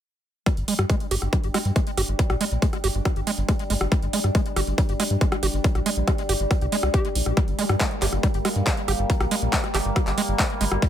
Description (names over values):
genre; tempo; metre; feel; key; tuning
psychedelic trance; 139 BPM; 4/4; straight; G phrygian; A4 = 440 Hz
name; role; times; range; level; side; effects
overtone-sweeping drone; sustained chords; 1.0-10.9 s; G3 to D4; -30 LUFS; equal; chorus, built-in reverb, sidechain pumping
overdriven acid bass; riff; 0.5-10.8 s; G3 to G4; -29 LUFS; right 2 dB; distortion, auto-pan, sidechain pumping, ping-pong delay
big-room dance drum kit; drums; 0.5-10.9 s; handclaps, hi-hat, rim click; -28 LUFS; equal; none
electronic kick drum; drums; 0.5-10.9 s; none; -23 LUFS; equal; none
round analog bass; bass; 0.6-10.8 s; G1 to G2; -24 LUFS; equal; none
room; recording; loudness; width
light reverb, digital ambience; none; -21 LUFS; side -10 dB against mid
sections
0.5-10.9 A section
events
filter sweep on acid bass 0.5-10.9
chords
0.5 G5